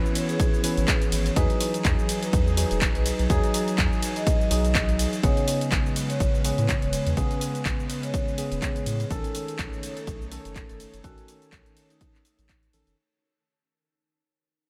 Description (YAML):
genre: deep house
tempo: 124 BPM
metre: 4/4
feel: swing 56% on 16ths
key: unclear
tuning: A4 = 441 Hz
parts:
  - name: airy breathy pad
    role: sustained chords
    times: 0.0-12.9 s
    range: E3 to C#5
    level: -38 LUFS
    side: equal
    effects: chorus, sidechain pumping
  - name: tine electric piano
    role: stabs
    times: 0.0-13.0 s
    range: C#3 to B4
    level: -32 LUFS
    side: equal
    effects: analog delay
  - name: punchy analog drum machine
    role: drums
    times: 0.1-13.0 s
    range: handclaps, hi-hat, ride cymbal, shaker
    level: -33 LUFS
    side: equal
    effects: none
  - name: vibraphone with medium mallets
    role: melody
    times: 0.3-12.9 s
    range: D#4 to D#5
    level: -36 LUFS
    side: equal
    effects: diffuse ambient delay
  - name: electronic kick drum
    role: drums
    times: 0.4-12.6 s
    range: none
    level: -28 LUFS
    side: equal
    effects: none
  - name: round analog bass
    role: bass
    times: 0.8-12.9 s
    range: E1 to A2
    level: -30 LUFS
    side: equal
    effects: sidechain pumping
room: moderate huge ambient reverb, RT60 8.5 s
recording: dreamy mix soaked in reverb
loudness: -25 LUFS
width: mono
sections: 0.0-13.0 A section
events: drop 0.0-13.0; fade-out 5.2-13.0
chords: 0.0 C#m7; 1.4 Emaj9; 5.2 Amaj9; 9.1 B9